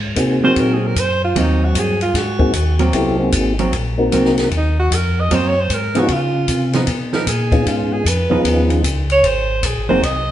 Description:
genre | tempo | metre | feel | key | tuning
soul jazz organ trio | 152 BPM | 4/4 | swing 64% on 8ths | Ab mixolydian | A4 = 440 Hz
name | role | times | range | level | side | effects
mellow tonewheel organ | bass | 0.0-10.3 s | Gb1 to Db3 | -19 LUFS | equal | slow rotary speaker
percussive tonewheel organ | melody | 0.2-10.0 s | Bb3 to Bb4 | -19 LUFS | left 2 dB | slow rotary speaker, chorus vibrato
compact cocktail drum kit | drums | 0.2-10.1 s | hi-hat, kick drum, ride cymbal, snare drum | -23 LUFS | left 1 dB | none
clear alto saxophone | melody | 0.4-10.3 s | Eb4 to Eb5 | -19 LUFS | right 2 dB | none
hollow-body jazz guitar | accompaniment | 0.4-10.0 s | F3 to Eb4 | -20 LUFS | right 3 dB | none
room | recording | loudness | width
wet large studio reverb, RT60 1.3 s | band playing live in one room, nothing above 11.0 kHz | -14 LUFS | side -12 dB against mid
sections
0.0-10.3 A section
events
alto saxophone solo 0.0-10.3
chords
0.0 Ab9; 6.1 Db9; 9.2 Ab9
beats
0.17 0.56 0.96 | 1.35 1.75 2.14 2.54 | 2.93 3.33 3.72 4.12 | 4.51 4.90 5.30 5.69 | 6.09 6.48 6.87 7.27 | 7.66 8.05 8.45 8.84 | 9.24 9.63 10.02

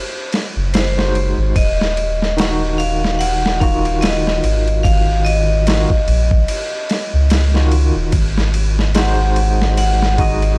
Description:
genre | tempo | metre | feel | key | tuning
trip hop | 73 BPM | 4/4 | swing 58% on 16ths | Eb dorian | A4 = 440 Hz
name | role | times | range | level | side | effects
vibraphone with hard mallets | melody | 0.0-10.6 s | C5 to Gb5 | -21 LUFS | equal | tape echo
dusty soul sampler-style drum kit | drums | 0.3-10.6 s | kick drum, ride cymbal, snare drum | -18 LUFS | equal | overdrive, studio reverb
soft dub sub bass | bass | 0.6-10.6 s | Eb1 to Db2 | -16 LUFS | equal | tube saturation
barky tine electric piano | accompaniment | 1.0-10.6 s | Eb3 to Eb5 | -22 LUFS | equal | overdrive, tremolo, vintage 12-bit sampler grit
room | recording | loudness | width
digital ambience | dry, gritty hardware recording, vinyl crackle, lossy compression artefacts | -13 LUFS | side -27 dB against mid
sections
0.0-10.6 A section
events
none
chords
0.0 Ab7; 1.6 Ebmadd9; 8.1 Ab7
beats
0.73 | 1.55 2.38 3.20 4.02 | 4.84 5.66 6.48 7.31 | 8.13 8.95 9.77

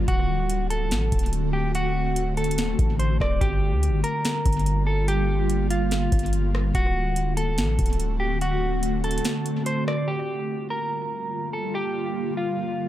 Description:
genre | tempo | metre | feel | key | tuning
hip hop, atmospheric cloud-rap | 144 BPM | 4/4 | half-time | G minor | A4 = 440 Hz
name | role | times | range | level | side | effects
clean electric guitar | melody | 0.0-12.9 s | F4 to D5 | -28 LUFS | equal | analog delay
ethereal airy pad | sustained chords | 0.0-12.9 s | D3 to F#4 | -28 LUFS | equal | ensemble chorus, built-in reverb, tremolo, sidechain pumping
long sustained 808-style bass | bass | 0.0-9.2 s | D1 to D2 | -25 LUFS | equal | none
booming analog drum machine | drums | 0.1-10.0 s | hi-hat, kick drum, rim click, snare drum | -26 LUFS | equal | overdrive, analog delay
room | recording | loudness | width
little or no reverb | echo-heavy mix | -22 LUFS | side -13 dB against mid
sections
0.0-10.1 A section; 10.1-12.9 B section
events
kick muted 9.2-10.1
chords
0.1 D7; 3.4 Gm7; 6.7 D7; 10.1 Gm7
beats
| 0.08 0.50 0.91 1.33 | 1.75 2.16 2.58 3.00 | 3.41 3.83 4.25 4.66 | 5.08 5.50 5.91 6.33 | 6.75 7.16 7.58 8.00 | 8.41 8.83 9.25 9.66 | 10.08 10.50 10.91 11.33 | 11.75 12.16 12.58

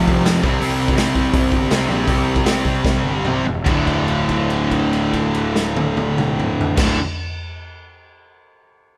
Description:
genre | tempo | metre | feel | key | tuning
punk rock | 142-167 BPM | 4/4 | straight | D minor | A4 = 438 Hz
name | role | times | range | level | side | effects
sludgy distorted guitar | riff | 0.0-7.0 s | D2 to C4 | -24 LUFS | equal | overdrive
tight distorted guitar | riff | 0.0-7.0 s | D2 to C4 | -24 LUFS | equal | distortion
fuzz picked electric bass | bass | 0.0-7.0 s | D1 to F2 | -25 LUFS | equal | overdrive
raw garage drum kit | drums | 0.1-6.9 s | crash cymbal, hi-hat, kick drum, snare drum, toms | -24 LUFS | equal | none
room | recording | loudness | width
moderate stone room reverb, RT60 1.0 s | band playing live in one room | -18 LUFS | mono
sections
0.0-3.7 A section; 3.7-7.0 B section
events
slowing down 0.6-3.7; drum fill 2.8-3.7; held note 3.7-6.8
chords
0.4 C5; 3.7 D5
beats
0.25 | 0.61 0.97 1.33 1.70 | 2.07 2.45 2.85 3.25 | 3.66 4.08 4.50 4.93 | 5.35 5.77 6.19 6.61

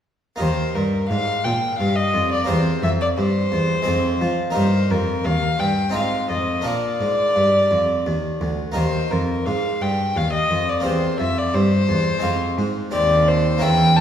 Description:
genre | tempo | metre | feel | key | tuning
classical, baroque-style sonata movement with continuo | 87 BPM | 3/4 | straight | Eb major | A4 = 441 Hz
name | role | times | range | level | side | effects
warm violin | melody | 0.4-14.0 s | Bb4 to A5 | -21 LUFS | left 2 dB | none
harpsichord | accompaniment | 0.4-14.0 s | D2 to Ab4 | -24 LUFS | equal | none
rich cello | bass | 0.4-14.0 s | D2 to F3 | -22 LUFS | right 1 dB | none
room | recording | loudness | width
wet recital hall reverb, RT60 1.4 s | heard from further back in the room | -18 LUFS | side -9 dB against mid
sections
0.4-14.0 A section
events
none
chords
0.4 Eb; 2.5 C7/E; 3.9 Fm; 4.6 Eb; 5.9 Fm7/Ab; 6.6 Bb; 8.8 Eb; 10.9 C7/E; 12.2 Fm; 12.9 Cm/Eb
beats
| 0.40 1.10 1.79 | 2.48 3.17 3.86 | 4.55 5.25 5.94 | 6.65 7.36 8.06 | 8.76 9.46 10.16 | 10.85 11.54 12.24 | 12.93 13.62

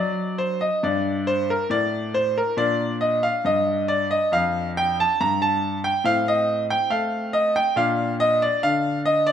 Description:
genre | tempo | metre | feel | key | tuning
classical, baroque-style suite movement for grand piano | 69 BPM | 4/4 | rubato | unclear | A4 = 439 Hz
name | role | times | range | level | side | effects
bright grand piano | solo | 0.0-9.3 s | F2 to Bb5 | -20 LUFS | equal | none
room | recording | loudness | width
moderate recital hall reverb, RT60 1.4 s | none | -20 LUFS | side -9 dB against mid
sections
0.0-9.3 A section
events
none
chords
0.0 D/F#; 0.8 G5; 2.6 Bb; 6.0 Am7b5; 7.8 Bb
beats
0.81 1.69 | 2.56 3.43 4.32 5.19 | 6.05 6.91 7.77 8.63

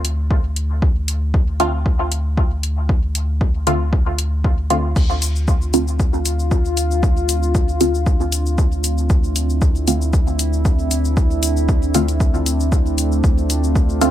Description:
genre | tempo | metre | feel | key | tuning
dub techno | 116 BPM | 4/4 | swing 54% on 16ths | D minor | A4 = 441 Hz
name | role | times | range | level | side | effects
soft dub sub bass | bass | 0.0-14.1 s | D2 | -20 LUFS | equal | sidechain pumping
deep house drum kit | drums | 0.0-14.1 s | crash cymbal, hi-hat, shaker | -25 LUFS | left 3 dB | none
electronic kick drum | drums | 0.3-13.9 s | none | -17 LUFS | equal | none
filtered dub chord stab | stabs | 1.6-14.1 s | D3 to F4 | -20 LUFS | right 1 dB | phaser, sidechain pumping, dub echo
warbly tape-like pad | sustained chords | 5.4-14.1 s | A3 to F4 | -23 LUFS | equal | chorus, built-in reverb, sidechain pumping
room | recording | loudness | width
little or no reverb | none | -16 LUFS | side -12 dB against mid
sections
0.0-14.1 A section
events
none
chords
0.0 Dm7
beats
0.31 | 0.82 1.34 1.86 2.38 | 2.89 3.41 3.93 4.45 | 4.96 5.48 6.00 6.51 | 7.03 7.55 8.07 8.58 | 9.10 9.62 10.13 10.65 | 11.17 11.69 12.20 12.72 | 13.24 13.76

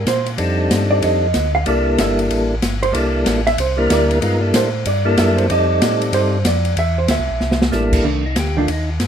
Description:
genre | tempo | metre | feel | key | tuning
soul jazz organ trio | 188 BPM | 4/4 | swing 63% on 8ths | F major | A4 = 442 Hz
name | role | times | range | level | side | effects
hollow-body jazz guitar | accompaniment | 0.0-8.7 s | Eb3 to F5 | -20 LUFS | right 4 dB | none
mellow tonewheel organ | bass | 0.0-9.1 s | G1 to Bb2 | -20 LUFS | equal | slow rotary speaker
open jazz drum kit | drums | 0.1-9.1 s | crash cymbal, hi-hat, kick drum, ride cymbal, snare drum | -21 LUFS | equal | none
percussive tonewheel organ | melody | 0.4-8.9 s | G3 to D5 | -18 LUFS | equal | slow rotary speaker
room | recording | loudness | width
light reverb | minimal, uncompressed stereo recording | -14 LUFS | side -8 dB against mid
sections
0.0-8.1 A section; 8.1-9.1 A section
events
hollow-body jazz guitar solo 0.0-8.1; drum fill 7.4-7.7; tonewheel organ solo 8.1-9.1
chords
0.4 F13; 1.7 C13; 5.5 F13; 6.8 C13; 8.1 F13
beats
0.06 | 0.38 0.70 1.02 1.34 | 1.66 1.98 2.30 2.62 | 2.94 3.26 3.58 3.90 | 4.22 4.54 4.86 5.18 | 5.50 5.81 6.13 6.45 | 6.77 7.09 7.41 7.73 | 8.05 8.37 8.69 9.01

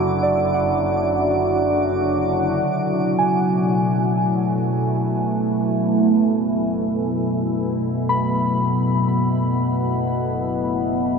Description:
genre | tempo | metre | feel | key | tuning
ambient | free time | none | none | F# minor | A4 = 440 Hz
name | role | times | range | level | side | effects
evolving wavetable pad | sustained chords | 0.0-11.2 s | B2 to B4 | -19 LUFS | equal | phaser, built-in reverb
dark symphonic double bass section | bass | 0.0-11.2 s | F#1 | -34 LUFS | equal | none
twinkling granular texture | texture | 0.0-2.7 s | D6 | -38 LUFS | equal | built-in reverb
muted felt-like synth keys | arpeggios | 0.2-11.2 s | D5 to B5 | -25 LUFS | right 1 dB | chorus, ping-pong delay
room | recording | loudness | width
wet huge ambient reverb, RT60 8.5 s | nothing above 7.9 kHz | -18 LUFS | side -5 dB against mid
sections
0.0-2.7 A section; 2.7-11.2 B section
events
none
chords
0.0 E7sus2/F#; 2.7 F#m11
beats
free time

